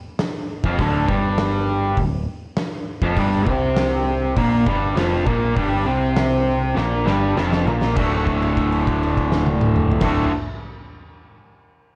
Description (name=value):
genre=garage rock duo or trio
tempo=100 BPM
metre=4/4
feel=straight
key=D mixolydian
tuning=A4 = 440 Hz
part: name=oversized low-tuned drum kit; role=drums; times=0.2-10.2 s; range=crash cymbal, hi-hat, kick drum, snare drum, toms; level=-26 LUFS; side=equal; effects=none
part: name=growling picked electric bass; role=bass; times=0.6-10.3 s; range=D1 to C2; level=-26 LUFS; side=equal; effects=overdrive
part: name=raw garage guitar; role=riff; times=0.7-10.3 s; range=D2 to F#4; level=-22 LUFS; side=equal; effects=overdrive
room=moderate stone room reverb, RT60 1.2 s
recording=cassette tape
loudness=-20 LUFS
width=mono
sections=0.0-8.0 A section; 8.0-10.4 B section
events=drum fill 6.8-8.0; held note 8.0-10.0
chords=0.0 Dmadd11; 3.2 Fsus24; 8.0 D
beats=0.20 | 0.79 1.39 1.99 2.58 | 3.18 3.78 4.38 4.97 | 5.57 6.17 6.77 7.37 | 7.97 8.57 9.18 9.78